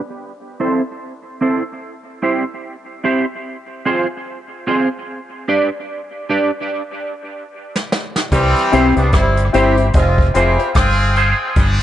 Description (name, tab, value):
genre	dub reggae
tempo	74 BPM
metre	4/4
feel	swing 59% on 16ths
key	C major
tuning	A4 = 441 Hz
part	clean electric guitar	accompaniment	0.6-11.4 s	C4 to D5	-19 LUFS	right 2 dB	analog chorus, high-pass filter, low-pass filter, dub echo
part	jazz brush drum kit	drums	7.8-11.8 s	hi-hat, kick drum, rim click, snare drum	-17 LUFS	equal	none
part	warm horn section	second line	8.3-11.8 s	E3 to Ab4	-17 LUFS	right 1 dB	high-pass filter, dub echo
part	deep dub fingered electric bass	bass	8.3-11.8 s	F1 to C2	-16 LUFS	equal	none
part	warm upright piano	stabs	8.7-11.4 s	C4 to C5	-20 LUFS	left 5 dB	high-pass filter, low-pass filter, dub echo
room	light reverb, studio ambience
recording	nothing above 10.7 kHz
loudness	-14 LUFS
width	side -12 dB against mid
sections	0.0-8.3 A section; 8.3-11.8 B section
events	break 0.0-8.3; filter sweep 0.0-8.3, 8.3-11.8; drum fill 6.7-8.3; stop 6.7-8.3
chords	0.2 Am; 1.8 C; 3.4 Fm; 5.1 G; 6.7 N.C.; 8.3 C; 9.9 Fm